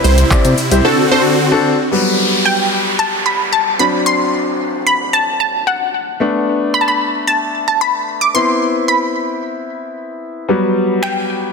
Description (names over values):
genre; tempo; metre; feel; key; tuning
dance-pop; 112 BPM; 4/4; straight; G major; A4 = 440 Hz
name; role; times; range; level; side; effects
plucky unison lead; melody; 0.0-1.2 s; A4 to C5; -18 LUFS; right 1 dB; phaser, sidechain pumping, ping-pong delay
clear concert grand piano; accompaniment; 0.0-11.5 s; F#3 to D5; -17 LUFS; left 2 dB; sidechain pumping
supersaw chords; sustained chords; 0.0-1.9 s; C3 to F#4; -17 LUFS; right 2 dB; sidechain pumping
chorused synth bass; bass; 0.0-0.8 s; C2 to C3; -12 LUFS; equal; sidechain pumping
smooth R&B drum kit; drums; 0.0-0.8, 11.0-11.2 s; finger snaps, handclaps, hi-hat, kick drum, shaker; -18 LUFS; equal; soft clipping on snare
downlifter; sound effects; 1.9-6.2 s; none; -20 LUFS; equal; none
analog pluck; melody; 2.5-11.5 s; F#5 to D6; -15 LUFS; equal; chorus, ping-pong delay
room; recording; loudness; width
moderate lush hall reverb, RT60 2.2 s; dense, heavily limited modern master; -12 LUFS; side -4 dB against mid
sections
0.0-1.9 A section; 1.9-11.5 B section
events
drop 0.0-1.9; silent gap 0.8-1.9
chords
0.0 C; 0.8 D7; 1.9 Gmaj7; 3.8 D7/F#; 6.2 Bm7; 8.3 Cmaj7; 10.5 Gmaj7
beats
0.31 0.85 1.38 | 1.92 2.45 2.99 3.53 | 4.06 4.60 5.13 5.67 | 6.20 6.74 7.28 7.81 | 8.35 8.88 9.42 9.95 | 10.49 11.03